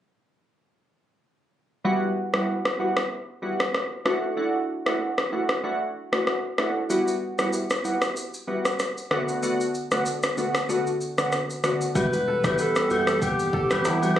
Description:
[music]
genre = afrobeats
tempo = 95 BPM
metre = 4/4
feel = swing 55% on 16ths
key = E minor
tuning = A4 = 440 Hz
[part]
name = glassy digital keys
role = accompaniment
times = 1.8-14.2 s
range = D3 to F#4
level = -26 LUFS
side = equal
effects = chorus
[part]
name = afro-pop drum kit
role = drums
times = 2.3-14.2 s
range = kick drum, rim click, shaker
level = -26 LUFS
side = equal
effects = overdrive
[part]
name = warm alto saxophone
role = melody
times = 12.0-14.2 s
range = E4 to B4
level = -26 LUFS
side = equal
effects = tape echo
[part]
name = warm analog pad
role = sustained chords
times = 12.0-14.2 s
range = E3 to F#5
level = -28 LUFS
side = right 1 dB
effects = chorus, sidechain pumping
[part]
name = saturated sub bass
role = bass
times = 12.0-14.2 s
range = E1 to G1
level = -34 LUFS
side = equal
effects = none
[part]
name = agogo bells and woodblock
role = percussion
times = 12.0-14.2 s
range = none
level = -31 LUFS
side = left 4 dB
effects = none
[part]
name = kora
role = riff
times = 12.1-14.2 s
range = G4 to B4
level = -31 LUFS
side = right 3 dB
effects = tape echo
[sound]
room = moderate small room reverb, RT60 0.5 s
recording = recorded on a phone in the room, club reverb, compression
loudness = -23 LUFS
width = side -11 dB against mid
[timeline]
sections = 1.8-12.0 A section; 12.0-14.2 B section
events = kick muted 9.4-12.0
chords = 1.8 Emadd9; 4.1 Dadd9; 6.9 Emadd9; 9.1 Bm7/D; 12.0 Emadd9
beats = | 1.85 2.48 3.11 3.74 | 4.38 5.01 5.64 6.27 | 6.90 7.53 8.16 8.80 | 9.43 10.06 10.69 11.32 | 11.95 12.59 13.22 13.85

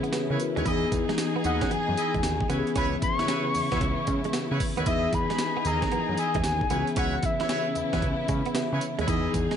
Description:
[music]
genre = R&B, new jack swing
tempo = 114 BPM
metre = 4/4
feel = swing 66% on 16ths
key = C# minor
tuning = A4 = 439 Hz
[part]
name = mellow tine electric piano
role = accompaniment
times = 0.0-9.6 s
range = E3 to B5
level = -30 LUFS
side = left 4 dB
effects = analog chorus
[part]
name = dark studio string section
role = sustained chords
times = 0.0-9.6 s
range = C#3 to G#4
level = -34 LUFS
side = right 1 dB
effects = none
[part]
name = direct-recorded clean electric guitar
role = riff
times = 0.0-9.6 s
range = G#3 to E4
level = -35 LUFS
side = right 9 dB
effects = analog chorus
[part]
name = breakbeat sampler-style drum kit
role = drums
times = 0.0-9.6 s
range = hi-hat, kick drum, snare drum, tambourine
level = -31 LUFS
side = right 1 dB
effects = overdrive
[part]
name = warm horn section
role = stabs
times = 0.3-9.3 s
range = E4 to D#5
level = -35 LUFS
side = right 1 dB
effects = none
[part]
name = fat analog bass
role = bass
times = 0.3-9.5 s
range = C#2 to C#3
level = -30 LUFS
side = right 1 dB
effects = none
[part]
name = soft octave-layered synth lead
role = melody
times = 1.5-8.3 s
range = E5 to C#6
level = -30 LUFS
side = left 2 dB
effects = chorus, ping-pong delay
[sound]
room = light reverb, digital ambience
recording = nothing above 11.0 kHz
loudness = -24 LUFS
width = side -8 dB against mid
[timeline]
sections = 0.0-9.6 A section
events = tine electric piano fill 8.0-9.1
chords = 0.0 C#m7; 0.7 Emaj7; 2.5 C#m7; 4.9 Emaj7; 6.7 C#m7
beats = 0.13 | 0.66 1.18 1.71 2.23 | 2.76 3.29 3.81 4.34 | 4.87 5.39 5.92 6.44 | 6.97 7.50 8.02 8.55 | 9.08

